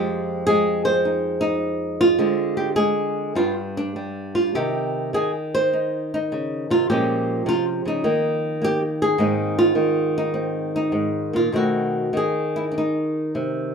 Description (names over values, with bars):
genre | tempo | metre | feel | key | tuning
solo jazz | 103 BPM | 4/4 | swing 67% on 8ths, rubato | Ab major | A4 = 440 Hz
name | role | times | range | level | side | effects
flamenco guitar | solo | 0.0-13.7 s | F2 to C5 | -20 LUFS | equal | none
room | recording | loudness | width
wet studio reverb, RT60 0.7 s | minimal, uncompressed stereo recording | -20 LUFS | side -6 dB against mid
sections
0.0-13.7 A section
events
none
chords
0.0 Fm7; 2.2 Dm7b5; 3.4 G; 4.5 Cm; 6.9 Bbm7; 8.0 Eb5; 9.2 Ab; 11.5 B7b9